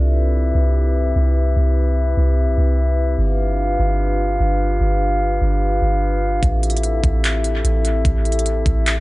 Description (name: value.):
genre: hip hop, atmospheric cloud-rap.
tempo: 148 BPM.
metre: 4/4.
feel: half-time.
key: C major.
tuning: A4 = 442 Hz.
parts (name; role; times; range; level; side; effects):
glass harmonica; sustained chords; 0.0-9.0 s; C4 to F5; -21 LUFS; left 1 dB; sidechain pumping.
soft 808-style bass; bass; 0.0-9.0 s; G1 to C2; -17 LUFS; equal; none.
trap drum kit; drums; 6.4-9.0 s; handclaps, hi-hat, kick drum; -21 LUFS; equal; dub echo.
room: light reverb.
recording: echo-heavy mix, nothing above 10.7 kHz.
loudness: -16 LUFS.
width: side -20 dB against mid.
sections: 0.0-9.0 A section.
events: none.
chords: 0.0 Cmaj7; 3.2 G7; 6.4 Am7.